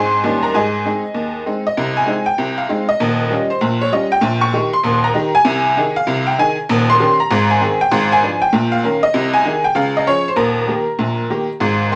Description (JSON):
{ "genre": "jazz, stride piano", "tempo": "195 BPM", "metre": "4/4", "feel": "swing 63% on 8ths", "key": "Ab major", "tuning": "A4 = 441 Hz", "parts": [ { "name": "tack piano", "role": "solo", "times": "0.0-12.0 s", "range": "Eb1 to Db6", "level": "-16 LUFS", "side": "equal", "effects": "none" } ], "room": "wet studio reverb, RT60 0.8 s", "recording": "none", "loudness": "-16 LUFS", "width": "mono", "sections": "0.0-1.8 A section; 1.8-11.6 B section", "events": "none", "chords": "0.2 Eb7; 0.5 Ab; 1.8 Ab/C; 3.0 Eb9; 4.2 Eb7/Bb; 5.5 Ab/C; 6.7 Eb7; 7.3 Ab; 7.9 Abdim7; 8.5 Eb5/Bb; 9.1 Ab/C; 9.8 Db; 10.4 Eb", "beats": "0.24 | 0.54 0.85 1.16 1.47 | 1.77 2.08 2.39 2.70 | 3.00 3.31 3.62 3.93 | 4.23 4.54 4.85 5.16 | 5.46 5.77 6.08 6.38 | 6.69 7.00 7.30 7.61 | 7.92 8.23 8.53 8.84 | 9.15 9.46 9.76 10.07 | 10.38 10.68 10.99 11.30 | 11.61 11.91" }